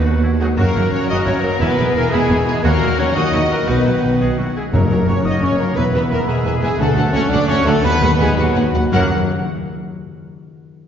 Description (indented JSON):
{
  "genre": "cinematic, heroic adventure film score",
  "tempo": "116 BPM (dotted quarters)",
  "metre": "6/8",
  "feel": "straight",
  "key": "F# mixolydian",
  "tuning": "A4 = 440 Hz",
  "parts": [
    { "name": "rich studio violin section", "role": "melody", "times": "0.0-9.1 s", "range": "G#4 to F#5", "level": "-27 LUFS", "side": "left 2 dB", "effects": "none" },
    { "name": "mellow clarinet", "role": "second line", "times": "0.0-9.1 s", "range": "G#4 to D#5", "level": "-29 LUFS", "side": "right 1 dB", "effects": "none" },
    { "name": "rich symphonic violin section", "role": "second line", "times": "0.0-9.1 s", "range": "F#4 to G#5", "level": "-28 LUFS", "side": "left 2 dB", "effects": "none" },
    { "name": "small flute group", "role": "second line", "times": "0.0-9.1 s", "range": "G#4 to D#6", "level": "-28 LUFS", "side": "equal", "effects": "none" },
    { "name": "clear symphonic viola section", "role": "accompaniment", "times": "0.0-9.1 s", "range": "B3 to B4", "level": "-27 LUFS", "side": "equal", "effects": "none" },
    { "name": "mellow French horn section", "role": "sustained chords", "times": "0.0-9.1 s", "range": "F#3 to D#4", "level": "-22 LUFS", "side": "left 2 dB", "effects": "none" },
    { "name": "concert harp", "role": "arpeggios", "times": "0.0-9.1 s", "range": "F#2 to E6", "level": "-25 LUFS", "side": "left 5 dB", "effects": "none" },
    { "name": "rich symphonic cello section", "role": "bass", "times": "0.0-9.1 s", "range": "D2 to B2", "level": "-22 LUFS", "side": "right 2 dB", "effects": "none" },
    { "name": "rich symphonic double bass section", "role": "bass", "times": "0.0-9.1 s", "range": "E1 to D#2", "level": "-21 LUFS", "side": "right 1 dB", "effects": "none" },
    { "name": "warm oboe", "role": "second line", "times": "0.1-9.1 s", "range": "D#4 to F#5", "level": "-29 LUFS", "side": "equal", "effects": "none" },
    { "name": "clear trombone section", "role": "sustained chords", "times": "0.4-9.1 s", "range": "F#2 to B3", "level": "-28 LUFS", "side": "right 1 dB", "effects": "none" },
    { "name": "warm trumpet section", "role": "stabs", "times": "0.4-9.1 s", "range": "F#4 to F#5", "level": "-25 LUFS", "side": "right 2 dB", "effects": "none" },
    { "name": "timpani", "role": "percussion", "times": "4.7-5.2, 8.9-9.1 s", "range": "F#2", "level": "-21 LUFS", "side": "left 2 dB", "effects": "none" }
  ],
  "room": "wet scoring stage reverb, RT60 2.0 s",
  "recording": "heard from further back in the room, nothing above 7.5 kHz",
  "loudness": "-14 LUFS",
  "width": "side -8 dB against mid",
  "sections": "0.0-4.7 A section; 4.7-8.9 B section; 8.9-10.0 C section",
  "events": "slowing down 6.3-8.9",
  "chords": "0.0 B/D#; 0.6 F#; 1.6 E; 2.6 D#m; 3.7 B; 4.7 F#; 5.8 E; 6.8 D; 7.8 B/D#; 8.9 F#",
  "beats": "0.06 | 0.58 1.10 | 1.61 2.13 | 2.65 3.16 | 3.69 4.21 | 4.74 5.25 | 5.77 6.28 | 6.80 7.31 | 7.84 8.38 | 8.93"
}